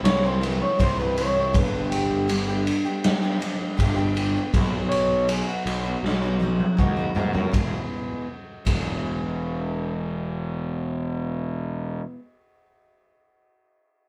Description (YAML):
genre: quiet-loud alternative rock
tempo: 80 BPM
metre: 4/4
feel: straight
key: unclear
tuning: A4 = 441 Hz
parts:
  - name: electric guitar through a small old amp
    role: melody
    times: 0.0-7.5 s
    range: F#4 to C#5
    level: -28 LUFS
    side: equal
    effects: spring reverb
  - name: picked steel-string acoustic guitar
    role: arpeggios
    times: 0.0-12.2 s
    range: E2 to G#4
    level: -32 LUFS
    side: equal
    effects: slapback echo
  - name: fuzz picked electric bass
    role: bass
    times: 0.0-12.0 s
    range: E1 to G#2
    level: -30 LUFS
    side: equal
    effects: overdrive
  - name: raw garage drum kit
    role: drums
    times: 0.1-8.9 s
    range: kick drum, ride cymbal, snare drum, toms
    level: -27 LUFS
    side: equal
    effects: none
room: moderate studio ambience, RT60 0.5 s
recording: band playing live in one room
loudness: -24 LUFS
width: mono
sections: 0.0-7.5 A section; 7.5-10.5 B section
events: clean electric guitar solo 0.0-7.5; drum fill 6.0-7.5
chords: 0.0 C; 1.5 G; 4.5 B; 7.5 E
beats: 0.04 0.78 | 1.53 2.28 3.03 3.77 | 4.53 5.28 6.03 6.78 | 7.53 8.28 9.03 9.78